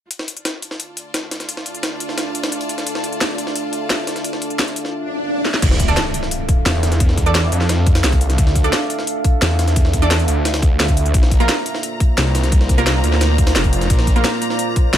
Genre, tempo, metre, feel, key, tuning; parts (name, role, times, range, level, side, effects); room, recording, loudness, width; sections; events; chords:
dark technical drum and bass; 174 BPM; 4/4; straight; D minor; A4 = 440 Hz
deep dark ambient pad; sustained chords; 1.4-15.0 s; Bb3 to F5; -24 LUFS; right 2 dB; chorus, built-in reverb, sidechain pumping
drum and bass drum kit; drums; 0.1-15.0 s; crash cymbal, hi-hat, snare drum; -21 LUFS; equal
jungle sampler-style drum kit; drums; 0.1-15.0 s; hi-hat, snare drum; -26 LUFS; equal; high-pass filter on hats, high-pass filter on snare
clear studio string section; texture; 0.1-4.9, 11.3-15.0 s; F4 to Bb5; -29 LUFS; left 3 dB; sidechain pumping
swell and impact; sound effects; 5.0-7.0 s; -25 LUFS; equal
snarling distorted saw bass; bass; 5.6-15.0 s; F1 to F2; -17 LUFS; equal; distortion, sidechain pumping
electronic kick drum; drums; 5.6-14.8 s; -15 LUFS; equal
orchestra-hit-like synth stab; stabs; 5.9-14.3 s; Bb3 to D5; -23 LUFS; right 3 dB; built-in reverb, tape echo
digital ambience; -15 LUFS; side -11 dB against mid
0.1-5.6 A section; 5.6-15.0 B section
fade-in on string section 0.1-5.6; swell 5.0-5.6; drum fill 5.5; drop 5.6-15.0; impact 5.6-7.0
0.1 Dm; 11.1 Bb